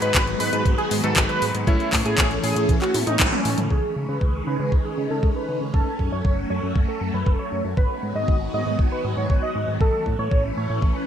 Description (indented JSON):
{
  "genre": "italo disco",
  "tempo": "118 BPM",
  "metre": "4/4",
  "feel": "straight",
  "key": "C# minor",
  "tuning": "A4 = 445 Hz",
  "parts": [
    { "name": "wide unison lead", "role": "melody", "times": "0.0-11.1 s", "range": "C#4 to D#5", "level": "-26 LUFS", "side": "right 1 dB", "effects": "analog chorus, ping-pong delay" },
    { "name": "phased string machine", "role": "sustained chords", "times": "0.0-11.1 s", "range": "D#3 to F#4", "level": "-28 LUFS", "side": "equal", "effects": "ensemble chorus, phaser" },
    { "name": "warm electric grand piano", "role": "stabs", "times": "0.0-3.0 s", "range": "G#3 to C#5", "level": "-29 LUFS", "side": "left 4 dB", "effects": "vintage 12-bit sampler grit, ping-pong delay" },
    { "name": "fat analog bass", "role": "bass", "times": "0.0-10.9 s", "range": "F#1 to C#3", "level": "-28 LUFS", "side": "equal", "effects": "none" },
    { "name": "house drum kit", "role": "drums", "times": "0.0-3.7 s", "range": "handclaps, hi-hat, toms", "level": "-23 LUFS", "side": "equal", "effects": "overdrive" },
    { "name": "electronic kick drum", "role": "drums", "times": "0.1-10.9 s", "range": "none", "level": "-21 LUFS", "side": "equal", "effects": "none" }
  ],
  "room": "light reverb",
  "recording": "bright 1980s-style digital production",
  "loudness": "-20 LUFS",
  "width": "side -9 dB against mid",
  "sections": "0.0-3.7 A section; 3.7-11.1 B section",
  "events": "drum fill 2.9-3.7; band accent 3.2",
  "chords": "0.0 G#m7; 1.7 A; 3.7 C#sus2; 5.7 F#m; 7.8 G#m7; 9.8 A",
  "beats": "0.15 0.66 1.16 | 1.67 2.18 2.69 3.20 | 3.71 4.21 4.72 5.23 | 5.74 6.25 6.76 7.26 | 7.77 8.28 8.79 9.30 | 9.81 10.32 10.82"
}